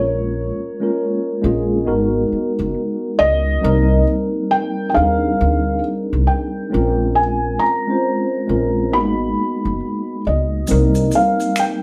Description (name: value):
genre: R&B, neo-soul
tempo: 68 BPM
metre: 4/4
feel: swing 62% on 16ths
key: C phrygian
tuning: A4 = 440 Hz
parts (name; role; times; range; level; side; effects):
- felt-muted upright piano; melody; 0.0-11.8 s; Db5 to Cb6; -22 LUFS; equal; none
- mellow tine electric piano; accompaniment; 0.0-11.8 s; G3 to C5; -21 LUFS; equal; none
- upright bass; bass; 0.0-11.1 s; Gb1 to Eb2; -22 LUFS; equal; none
- maracas and finger snaps; percussion; 10.7-11.8 s; none; -30 LUFS; equal; none
room: wet studio reverb, RT60 0.6 s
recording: band playing live in one room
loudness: -18 LUFS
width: mono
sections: 0.0-10.7 A section; 10.7-11.8 A section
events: none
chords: 0.0 Bbm7; 1.9 Abm9; 3.6 Cm9; 6.7 Bbm9; 8.9 Abm9; 10.7 Cm7